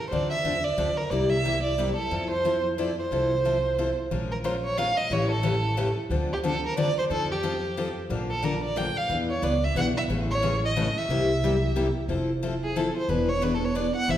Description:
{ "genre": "acoustic string swing (jazz manouche)", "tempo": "180 BPM", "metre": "3/4", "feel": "swing 60% on 8ths", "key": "F major", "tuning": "A4 = 441 Hz", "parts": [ { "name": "warm violin", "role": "melody", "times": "0.0-14.2 s", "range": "G4 to G5", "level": "-27 LUFS", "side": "right 2 dB", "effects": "none" }, { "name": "picked steel-string acoustic guitar", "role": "accompaniment", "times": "0.1-14.2 s", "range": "C3 to Bb4", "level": "-28 LUFS", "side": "left 2 dB", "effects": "none" }, { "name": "upright bass", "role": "bass", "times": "0.1-14.2 s", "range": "E1 to F2", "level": "-30 LUFS", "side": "equal", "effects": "none" } ], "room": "wet recital hall reverb, RT60 1.5 s", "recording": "recorded in a church or concert hall", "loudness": "-23 LUFS", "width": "side -11 dB against mid", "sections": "0.0-4.1 A section; 4.1-12.1 B section; 12.1-14.2 C section", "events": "violin solo 12.1-14.2", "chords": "0.1 Dm9; 1.1 C7; 2.1 Fmaj7; 4.1 Bbm7; 5.1 A7; 6.1 Dm7; 7.1 F7; 8.1 Bbmaj7; 9.1 E7; 10.1 Amaj7; 11.1 C7; 12.1 Fmaj7; 13.1 E7" }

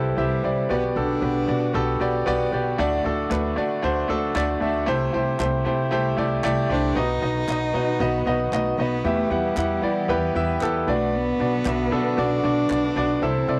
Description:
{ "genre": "piano-driven pop", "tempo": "115 BPM", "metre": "4/4", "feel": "straight", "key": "unclear", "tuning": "A4 = 440 Hz", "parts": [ { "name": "rich cello", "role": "melody", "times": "0.0-2.0, 6.7-13.6 s", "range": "G3 to D#4", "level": "-29 LUFS", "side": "equal", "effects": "cassette tape" }, { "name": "bright concert grand piano", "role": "accompaniment", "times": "0.0-13.6 s", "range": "G2 to F#5", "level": "-25 LUFS", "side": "equal", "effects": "cassette tape" }, { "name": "clear studio string section", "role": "sustained chords", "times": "0.0-13.6 s", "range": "C3 to G4", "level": "-41 LUFS", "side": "equal", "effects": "none" }, { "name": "upright bass", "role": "bass", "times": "0.0-13.6 s", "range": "B1 to E3", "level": "-30 LUFS", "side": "equal", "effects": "none" }, { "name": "group handclap", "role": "percussion", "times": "3.3-12.8 s", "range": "none", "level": "-39 LUFS", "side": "equal", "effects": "none" } ], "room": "moderate small room reverb, RT60 0.6 s", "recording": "home recording on cassette", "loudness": "-23 LUFS", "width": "mono", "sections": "0.0-7.0 A section; 7.0-13.6 B section", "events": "none", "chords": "0.0 Cadd9; 0.7 Gmaj7/B; 2.8 D; 4.9 Am7/C; 7.0 B; 9.1 Em; 10.9 Bm" }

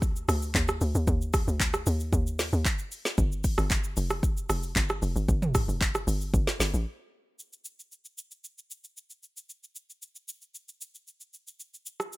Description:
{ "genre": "amapiano", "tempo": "114 BPM", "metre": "4/4", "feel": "straight", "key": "unclear", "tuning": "A4 = 440 Hz", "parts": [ { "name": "tight log drum bass", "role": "bass", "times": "0.0-6.9 s", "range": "F1 to Eb2", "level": "-28 LUFS", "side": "equal", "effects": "none" }, { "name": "deep house drum kit", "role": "drums", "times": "0.0-12.2 s", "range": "handclaps, hi-hat, kick drum, rim click, shaker, snare drum, toms", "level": "-28 LUFS", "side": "equal", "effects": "none" } ], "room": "digital ambience", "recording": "rough home demo mix", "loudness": "-25 LUFS", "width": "side -20 dB against mid", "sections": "0.0-7.4 A section; 7.4-12.2 B section", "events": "drop 0.0-7.4; break 6.9-7.4", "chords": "none" }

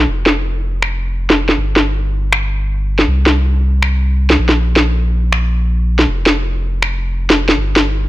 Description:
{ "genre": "future bass", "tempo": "160 BPM", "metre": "4/4", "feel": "swing 53% on 16ths, half-time", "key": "unclear", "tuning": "A4 = 442 Hz", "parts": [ { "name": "saturated sub bass", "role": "bass", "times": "0.0-8.1 s", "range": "F1 to C2", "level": "-15 LUFS", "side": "equal", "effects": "none" }, { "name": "electronic snare drum and finger snaps", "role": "drums", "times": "0.3-7.8 s", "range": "none", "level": "-14 LUFS", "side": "equal", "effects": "low-pass filter on snare" } ], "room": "little or no reverb", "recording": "none", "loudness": "-12 LUFS", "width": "side -16 dB against mid", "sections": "0.0-8.1 A section", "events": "none", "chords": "none" }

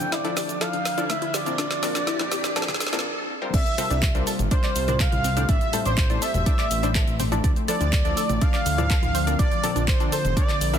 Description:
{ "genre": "progressive house", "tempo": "123 BPM", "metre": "4/4", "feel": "straight", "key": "D minor", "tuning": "A4 = 441 Hz", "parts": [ { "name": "expressive synth lead", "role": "melody", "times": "0.0-10.8 s", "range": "C5 to G5", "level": "-29 LUFS", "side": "right 1 dB", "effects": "chorus, ping-pong delay" }, { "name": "evolving wavetable pad", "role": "sustained chords", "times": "0.0-10.8 s", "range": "D2 to G4", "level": "-33 LUFS", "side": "left 2 dB", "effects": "chorus, built-in reverb, vintage 12-bit sampler grit, sidechain pumping" }, { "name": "tight sequenced synth", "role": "arpeggios", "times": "0.0-10.8 s", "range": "D3 to D6", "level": "-31 LUFS", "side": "equal", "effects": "chorus, sidechain pumping, ping-pong delay" }, { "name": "wide unison pluck", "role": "stabs", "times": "0.0-10.8 s", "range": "A2 to F5", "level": "-32 LUFS", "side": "left 3 dB", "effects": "sidechain pumping, ping-pong delay" }, { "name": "deep house drum kit", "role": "drums", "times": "0.0-10.8 s", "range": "crash cymbal, handclaps, hi-hat, shaker, snare drum", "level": "-29 LUFS", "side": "equal", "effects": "high-pass filter on snare, small room ambience, sidechain pumping on hats, high-pass filter on hats, sidechain pumping on perc, high-pass filter on perc, sidechain pumping on cymbals, high-pass filter on cymbals" }, { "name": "riser", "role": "sound effects", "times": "0.0-3.0 s", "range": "none", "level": "-33 LUFS", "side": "right 1 dB", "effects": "none" }, { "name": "electronic congas and toms", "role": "percussion", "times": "1.0-10.3 s", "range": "none", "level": "-32 LUFS", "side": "left 2 dB", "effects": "overdrive, sidechain pumping on toms, small room ambience, sidechain pumping on perc" }, { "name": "soft supersaw", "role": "second line", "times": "3.5-10.8 s", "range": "C5 to F5", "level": "-33 LUFS", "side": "right 2 dB", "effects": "sidechain pumping, ping-pong delay" }, { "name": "fat analog bass", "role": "bass", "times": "3.5-10.8 s", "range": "E1 to D2", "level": "-25 LUFS", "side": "equal", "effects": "sidechain pumping" }, { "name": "electronic kick drum", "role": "drums", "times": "3.5-10.5 s", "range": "none", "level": "-22 LUFS", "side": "equal", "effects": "small room ambience" } ], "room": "light reverb, digital ambience", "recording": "dense, heavily limited modern master, high-pass filter", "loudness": "-20 LUFS", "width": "side -9 dB against mid", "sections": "0.0-3.5 A section; 3.5-10.8 B section", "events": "build-up 0.0-3.5; drum fill 0.0-3.0; riser 0.0-3.0; filter sweep on synth arpeggio sound 0.0-3.5; filter sweep on ambient pad 0.0-3.5; break 3.0-3.5; drop 3.5-10.8", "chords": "0.0 Dmadd9; 1.6 Bbadd9; 3.5 C7sus4; 5.5 Am7; 7.4 Dmadd9; 9.4 Bbadd9" }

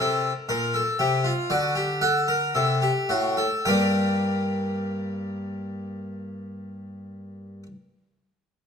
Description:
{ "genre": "classical, baroque-style 3-part fugue for harpsichord", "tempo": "53-61 BPM", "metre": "4/4", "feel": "straight", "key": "G minor", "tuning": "A4 = 440 Hz", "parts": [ { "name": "harpsichord", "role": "solo", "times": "0.0-7.7 s", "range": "G2 to G5", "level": "-23 LUFS", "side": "left 1 dB", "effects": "none" } ], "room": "moderate stone room reverb, RT60 1.3 s", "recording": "minimal, uncompressed stereo recording", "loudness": "-22 LUFS", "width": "side -6 dB against mid", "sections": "0.0-3.7 A section; 3.7-8.2 B section", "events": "slowing down 0.0-3.7", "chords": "0.0 Gm; 1.5 D7; 3.7 Gm" }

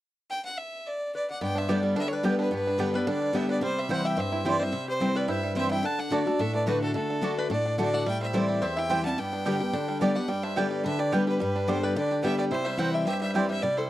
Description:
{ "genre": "bluegrass", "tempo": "216 BPM", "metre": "4/4", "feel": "straight", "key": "G major", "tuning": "A4 = 440 Hz", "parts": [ { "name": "clear fiddle", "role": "melody", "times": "0.3-13.9 s", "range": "A4 to A5", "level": "-30 LUFS", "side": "equal", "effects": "none" }, { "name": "lap resonator guitar", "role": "second line", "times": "1.1-13.9 s", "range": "F#4 to F#5", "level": "-36 LUFS", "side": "left 3 dB", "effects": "none" }, { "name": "picked steel-string acoustic guitar", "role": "accompaniment", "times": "1.4-13.9 s", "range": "E2 to G4", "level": "-28 LUFS", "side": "left 2 dB", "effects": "none" }, { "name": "bluegrass banjo", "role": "arpeggios", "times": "1.4-13.9 s", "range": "G3 to G4", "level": "-33 LUFS", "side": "right 5 dB", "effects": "none" }, { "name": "mandolin", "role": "stabs", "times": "1.7-13.5 s", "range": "A3 to A5", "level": "-30 LUFS", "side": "right 4 dB", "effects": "none" } ], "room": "little or no reverb", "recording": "dry, close 1970s-style studio recording", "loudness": "-25 LUFS", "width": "side -14 dB against mid", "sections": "0.3-1.4 A section; 1.4-10.3 B section; 10.3-13.9 B section", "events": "none", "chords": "0.3 N.C.; 1.4 G; 3.6 C; 5.8 D; 8.1 Am7; 9.2 G; 12.5 C" }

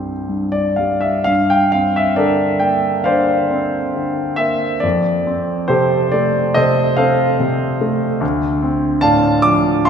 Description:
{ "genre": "classical, impressionist solo piano", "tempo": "60-74 BPM", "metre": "4/4", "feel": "rubato", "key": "G dorian", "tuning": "A4 = 440 Hz", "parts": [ { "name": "clear grand piano", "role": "solo", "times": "0.0-9.9 s", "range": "D2 to D6", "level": "-14 LUFS", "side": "equal", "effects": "none" } ], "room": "wet concert hall reverb, RT60 2.2 s", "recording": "recorded in a church or concert hall", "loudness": "-14 LUFS", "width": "side -7 dB against mid", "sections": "0.0-9.9 A section", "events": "none", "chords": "0.0 C5; 1.3 Gm11; 4.8 Fadd9; 8.2 Dm7" }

